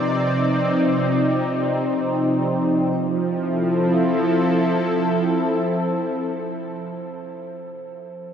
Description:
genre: ambient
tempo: free time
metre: none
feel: none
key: F major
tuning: A4 = 441 Hz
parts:
  - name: warm analog pad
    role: sustained chords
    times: 0.0-7.7 s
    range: C3 to D5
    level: -20 LUFS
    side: equal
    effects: chorus
  - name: vibraphone with medium mallets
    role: arpeggios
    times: 0.0-8.3 s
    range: C5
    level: -37 LUFS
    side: right 3 dB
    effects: none
  - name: analog drone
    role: drone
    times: 0.0-7.1 s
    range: F3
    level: -28 LUFS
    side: right 2 dB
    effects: chorus
room: wet huge ambient reverb, RT60 6.9 s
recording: in a vast, echoing space, cassette tape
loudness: -18 LUFS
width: side -8 dB against mid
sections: 0.0-2.9 A section; 2.9-6.9 B section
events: none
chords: 0.0 Cmadd9; 2.9 Fmaj7

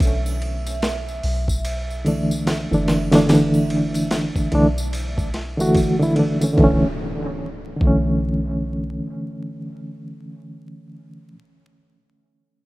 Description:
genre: trip hop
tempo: 73 BPM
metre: 4/4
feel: swing 60% on 16ths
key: B minor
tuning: A4 = 440 Hz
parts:
  - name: dark analog pad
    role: sustained chords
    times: 0.0-6.6 s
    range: E5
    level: -35 LUFS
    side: right 4 dB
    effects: chorus, phaser
  - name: soft 808-style bass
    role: bass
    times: 0.0-9.0 s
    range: F#1 to B1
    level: -25 LUFS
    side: equal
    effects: none
  - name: dusty soul sampler-style drum kit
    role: drums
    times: 0.0-8.1 s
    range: hi-hat, kick drum, ride cymbal, snare drum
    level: -26 LUFS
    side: equal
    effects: overdrive
  - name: tambourine and triangle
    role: percussion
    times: 0.0-6.5 s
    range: none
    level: -37 LUFS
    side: equal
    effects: none
  - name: reed electric piano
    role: accompaniment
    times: 2.0-11.4 s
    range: D3 to F#4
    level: -19 LUFS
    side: equal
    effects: tremolo, tape echo
  - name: impact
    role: sound effects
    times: 6.6-10.7 s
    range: none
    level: -34 LUFS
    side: equal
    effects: none
room: light reverb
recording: rough home demo mix, vinyl crackle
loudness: -18 LUFS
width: side -19 dB against mid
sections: 0.0-6.6 A section; 6.6-9.9 B section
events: none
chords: 0.0 Bm11

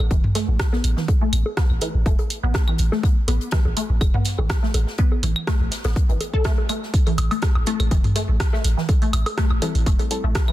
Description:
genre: minimal techno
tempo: 123 BPM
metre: 4/4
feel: swing 53% on 16ths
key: A minor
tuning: A4 = 440 Hz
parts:
  - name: punchy sub bass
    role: bass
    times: 0.0-10.3 s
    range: E1 to A1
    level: -20 LUFS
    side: equal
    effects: sidechain pumping
  - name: resonant blip pluck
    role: riff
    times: 0.1-10.5 s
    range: E3 to A4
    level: -28 LUFS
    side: left 1 dB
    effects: phaser, ensemble chorus, cassette tape, sidechain pumping, tape echo
  - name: electronic kick drum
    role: drums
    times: 0.1-10.5 s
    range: none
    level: -20 LUFS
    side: equal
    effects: none
  - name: swinging big-band drum kit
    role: drums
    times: 0.1-10.5 s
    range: hi-hat, snare drum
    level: -39 LUFS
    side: left 4 dB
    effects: high-pass filter on hats, high-pass filter on snare, high-pass filter on room
  - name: electronic toms, bongos, claves and woodblock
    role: percussion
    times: 0.2-10.5 s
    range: none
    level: -28 LUFS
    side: equal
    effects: ping-pong delay
  - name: punchy analog drum machine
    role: drums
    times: 0.4-10.5 s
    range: hi-hat, rim click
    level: -30 LUFS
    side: right 2 dB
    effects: none
  - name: filtered dub chord stab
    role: stabs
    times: 7.7-10.2 s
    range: G3 to A4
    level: -30 LUFS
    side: left 3 dB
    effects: chorus, ping-pong delay
room: little or no reverb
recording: dense, heavily limited modern master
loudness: -18 LUFS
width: side -15 dB against mid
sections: 0.0-10.5 A section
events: none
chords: 0.0 A5

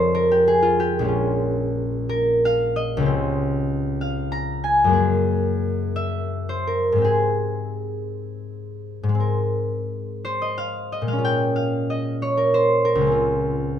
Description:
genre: classical, solo harp piece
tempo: 53-65 BPM (dotted quarters)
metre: 6/8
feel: rubato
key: Ab major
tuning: A4 = 440 Hz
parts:
  - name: concert harp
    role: solo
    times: 0.0-13.8 s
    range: Bb1 to Bb5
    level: -19 LUFS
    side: left 1 dB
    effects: none
room: light reverb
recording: minimal, uncompressed stereo recording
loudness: -19 LUFS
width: side -9 dB against mid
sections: 0.0-9.3 A section; 9.3-13.8 A section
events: none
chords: 0.0 Fm9; 1.1 Bbm7; 3.1 Dbmaj7#11; 5.0 Gb9; 7.1 Abmaj7; 9.3 Ab69; 11.2 Bbm7; 13.2 Dbmaj7

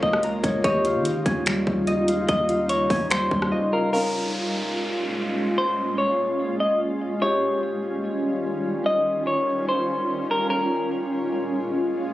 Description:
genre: hip hop, atmospheric cloud-rap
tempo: 146 BPM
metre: 4/4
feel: half-time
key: Db lydian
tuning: A4 = 439 Hz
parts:
  - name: semi-hollow electric guitar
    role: melody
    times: 0.0-10.9 s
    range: Bb4 to Eb5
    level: -24 LUFS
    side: left 1 dB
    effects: tape echo
  - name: shimmering ambient pad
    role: sustained chords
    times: 0.0-12.1 s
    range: Bb2 to F4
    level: -26 LUFS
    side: equal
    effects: chorus, built-in reverb, sidechain pumping
  - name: concert harp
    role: arpeggios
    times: 0.0-6.2 s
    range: G3 to Bb5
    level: -27 LUFS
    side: left 1 dB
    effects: tape echo
  - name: soft 808-style bass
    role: bass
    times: 0.0-3.5 s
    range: Db2 to Eb3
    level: -31 LUFS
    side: equal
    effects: none
  - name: trap drum kit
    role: drums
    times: 0.0-3.5 s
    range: finger snaps, hi-hat, kick drum, rim click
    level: -25 LUFS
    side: equal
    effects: none
  - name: felt-muted upright piano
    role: texture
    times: 0.0-12.1 s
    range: Db4 to F5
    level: -32 LUFS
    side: left 1 dB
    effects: none
  - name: downlifter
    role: sound effects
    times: 3.9-7.2 s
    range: none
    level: -33 LUFS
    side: equal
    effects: none
room: light reverb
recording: recorded on a phone in the room, club reverb, compression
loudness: -21 LUFS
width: side -15 dB against mid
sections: 0.0-3.9 A section; 3.9-12.1 B section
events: silent gap 3.5-3.9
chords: 0.0 Db6; 0.6 Eb9; 3.9 Db6; 7.2 Eb9; 10.5 Db6

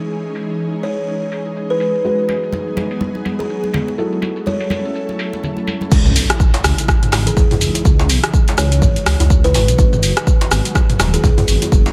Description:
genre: afro house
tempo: 124 BPM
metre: 4/4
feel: swing 58% on 16ths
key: C# minor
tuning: A4 = 444 Hz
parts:
  - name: ethereal airy pad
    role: sustained chords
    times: 0.0-11.9 s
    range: C#3 to A4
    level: -27 LUFS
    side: equal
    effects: ensemble chorus, built-in reverb, sidechain pumping
  - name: felt-muted upright piano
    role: stabs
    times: 0.0-5.9 s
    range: E3 to C#5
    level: -28 LUFS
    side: equal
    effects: sidechain pumping, low-pass filter, digital delay
  - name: deep house drum kit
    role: drums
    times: 0.0-11.9 s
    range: crash cymbal, hi-hat, rim click, shaker, toms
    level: -22 LUFS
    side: equal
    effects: low-pass filter on perc, low-pass filter on toms, low-pass filter on hats, low-pass filter on snare, low-pass filter on cymbals, low-pass filter on room
  - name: buzzing kalimba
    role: melody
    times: 0.8-11.3 s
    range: G#4 to C#5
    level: -26 LUFS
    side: equal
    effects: digital delay
  - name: congas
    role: percussion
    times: 2.3-5.9 s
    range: none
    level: -26 LUFS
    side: equal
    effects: none
  - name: dark detuned saw bass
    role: bass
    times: 5.9-11.9 s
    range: D#1 to E2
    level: -19 LUFS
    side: equal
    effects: sidechain pumping
  - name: electronic kick drum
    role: drums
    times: 5.9-11.8 s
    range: none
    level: -15 LUFS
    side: equal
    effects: none
  - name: djembe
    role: percussion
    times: 5.9-11.9 s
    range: none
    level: -27 LUFS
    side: equal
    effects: none
  - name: impact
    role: sound effects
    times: 5.9-7.9 s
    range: none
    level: -25 LUFS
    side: equal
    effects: none
room: light reverb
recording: none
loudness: -16 LUFS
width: mono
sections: 0.0-5.9 A section; 5.9-11.9 B section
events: filter sweep on felt piano 0.0-5.9; drop 5.9-11.9; impact 5.9-7.9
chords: 0.0 C#madd9; 2.0 G#m7; 4.0 F#m7; 5.9 C#madd9; 9.8 G#m7

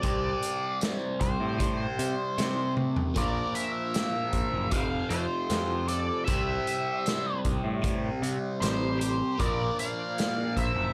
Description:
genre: blues rock power trio and southern rock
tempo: 77 BPM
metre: 4/4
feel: straight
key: C mixolydian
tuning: A4 = 438 Hz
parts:
  - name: octave-fuzz lead guitar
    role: melody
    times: 0.0-10.9 s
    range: C5 to F5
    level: -35 LUFS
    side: equal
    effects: wah, distortion
  - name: overdriven electric guitar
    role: riff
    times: 0.0-10.9 s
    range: F2 to C4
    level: -34 LUFS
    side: equal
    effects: phaser
  - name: overdriven picked electric bass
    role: bass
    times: 0.0-10.9 s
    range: F1 to C3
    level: -34 LUFS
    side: equal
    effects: none
  - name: vintage drum kit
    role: drums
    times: 0.0-10.7 s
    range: hi-hat, kick drum, snare drum, toms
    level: -34 LUFS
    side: equal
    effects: none
  - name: smooth overdriven lead guitar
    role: second line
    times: 3.2-10.9 s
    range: F4 to D5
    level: -43 LUFS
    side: equal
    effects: analog delay
room: small room ambience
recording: none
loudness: -29 LUFS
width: mono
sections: 0.0-10.9 A section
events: drum fill 2.8-3.2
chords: 0.0 C5; 3.2 Bb5; 4.7 F5; 6.3 C; 9.4 Bb

